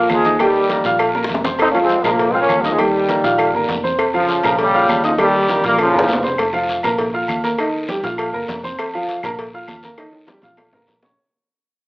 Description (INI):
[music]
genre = latin, salsa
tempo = 200 BPM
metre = 4/4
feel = straight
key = unclear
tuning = A4 = 440 Hz
[part]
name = bright trombone section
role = melody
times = 0.0-6.2 s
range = Db3 to Eb4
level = -17 LUFS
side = equal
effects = none
[part]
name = clear concert grand piano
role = accompaniment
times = 0.0-11.2 s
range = Eb3 to F6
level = -19 LUFS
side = equal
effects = none
[part]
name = vintage muted fingered electric bass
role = bass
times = 0.0-11.1 s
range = F1 to Eb2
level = -30 LUFS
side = equal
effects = none
[part]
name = claves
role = percussion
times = 0.1-10.7 s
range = none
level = -30 LUFS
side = left 1 dB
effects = none
[part]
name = congas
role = percussion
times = 0.1-11.1 s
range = none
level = -28 LUFS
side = equal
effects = none
[part]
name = cowbell and bongos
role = percussion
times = 0.1-11.1 s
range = none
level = -24 LUFS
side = left 1 dB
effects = none
[part]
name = guiro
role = percussion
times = 0.1-11.2 s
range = none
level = -33 LUFS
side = left 2 dB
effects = none
[part]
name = timbales and agogo bells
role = percussion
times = 0.1-11.1 s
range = none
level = -25 LUFS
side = right 1 dB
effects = none
[sound]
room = moderate large studio reverb, RT60 1.1 s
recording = AM radio sound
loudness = -15 LUFS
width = side -24 dB against mid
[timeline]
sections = 0.0-6.4 A section; 6.4-11.2 B section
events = drum fill 1.1-1.6, 5.5-6.4, 10.0-11.2; fade-out 6.4-11.2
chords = 0.4 Eb; 1.0 Bb5; 2.8 Eb; 3.4 Bb5; 4.0 F5; 4.6 Bbm; 5.2 Eb; 5.8 Bbm; 6.4 Fsus4; 7.0 Bb5; 7.6 Eb; 8.2 Bb5; 8.8 F5; 9.4 Bb5; 10.0 Eb; 10.6 Bbm